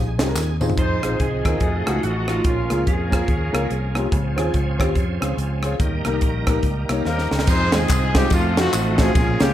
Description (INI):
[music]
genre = uptempo gospel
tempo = 143 BPM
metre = 4/4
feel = swing 61% on 8ths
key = unclear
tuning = A4 = 440 Hz
[part]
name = bright tonewheel organ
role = sustained chords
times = 0.0-9.5 s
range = F3 to G5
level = -29 LUFS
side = right 3 dB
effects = slow rotary speaker, overdrive, chorus vibrato
[part]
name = fingered electric bass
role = bass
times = 0.0-9.5 s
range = A1 to F2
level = -24 LUFS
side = equal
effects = none
[part]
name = warm upright piano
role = accompaniment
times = 0.2-9.5 s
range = Bb2 to G5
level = -25 LUFS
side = left 1 dB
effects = lush chorus
[part]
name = crisp fusion drum kit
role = drums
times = 0.2-9.5 s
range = crash cymbal, hi-hat, kick drum, ride cymbal, rim click, snare drum, toms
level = -22 LUFS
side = equal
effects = none
[part]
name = tambourine and handclaps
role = percussion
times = 0.2-0.7, 7.5-9.5 s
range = none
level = -32 LUFS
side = equal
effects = none
[part]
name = electric slide guitar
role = melody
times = 0.8-3.9 s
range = F4 to C5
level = -28 LUFS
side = right 3 dB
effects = analog delay
[part]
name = warm horn section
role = melody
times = 0.8-4.0, 7.1-9.5 s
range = Ab3 to C5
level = -25 LUFS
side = left 2 dB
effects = analog delay
[sound]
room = moderate plate reverb, RT60 1.1 s, small room ambience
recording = dreamy mix soaked in reverb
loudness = -18 LUFS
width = side -12 dB against mid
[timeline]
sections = 0.8-7.5 A section; 7.5-9.5 B section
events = drum fill 0.4-0.8, 7.1-7.5; tonewheel organ fill 6.6-7.5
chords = 0.0 Fm7; 1.6 F7b9; 2.4 Bbm7; 4.1 Dbmaj7; 5.8 Eb; 7.5 Fm7; 8.3 F7b9